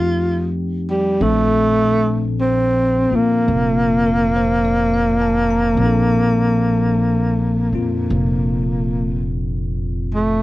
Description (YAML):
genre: jazz ballad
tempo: 52 BPM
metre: 4/4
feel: swing 67% on 8ths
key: Bb major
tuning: A4 = 438 Hz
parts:
  - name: breathy tenor saxophone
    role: melody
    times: 0.0-10.4 s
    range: G3 to F4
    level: -17 LUFS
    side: equal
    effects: none
  - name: bell-like tine electric piano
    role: accompaniment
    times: 0.0-10.4 s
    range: Bb2 to Bb5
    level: -22 LUFS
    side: left 3 dB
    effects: wide subtle chorus
  - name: upright bass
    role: bass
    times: 0.0-10.4 s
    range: F1 to F2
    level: -22 LUFS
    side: right 1 dB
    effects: none
room: little or no reverb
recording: dry, close 1970s-style studio recording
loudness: -15 LUFS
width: side -17 dB against mid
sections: 0.0-10.4 A section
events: none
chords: 0.0 F9; 1.2 Bbmaj7